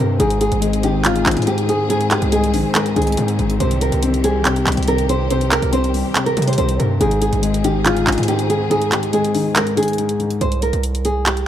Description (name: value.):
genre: hip hop, trap.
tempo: 141 BPM.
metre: 4/4.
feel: half-time.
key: unclear.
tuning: A4 = 440 Hz.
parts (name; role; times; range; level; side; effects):
nylon-string guitar; melody; 0.0-11.5 s; F4 to C5; -20 LUFS; right 2 dB; low-pass filter.
dark grand piano; accompaniment; 0.0-10.4 s; Ab2 to C4; -21 LUFS; left 5 dB; low-pass filter.
warm symphonic string section; sustained chords; 0.0-10.4 s; Eb3 to Ab4; -26 LUFS; left 1 dB; none.
distorted 808-style bass; bass; 0.0-11.4 s; G1 to C3; -20 LUFS; right 1 dB; distortion.
trap drum kit; drums; 0.2-11.5 s; handclaps, hi-hat; -21 LUFS; right 1 dB; none.
room: light reverb, studio ambience.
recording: none.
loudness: -15 LUFS.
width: side -10 dB against mid.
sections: 0.0-10.4 A section; 10.4-11.5 B section.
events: kick muted 8.7-10.4.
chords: 0.2 Ab; 3.6 Cm; 7.0 Ab; 10.4 C5.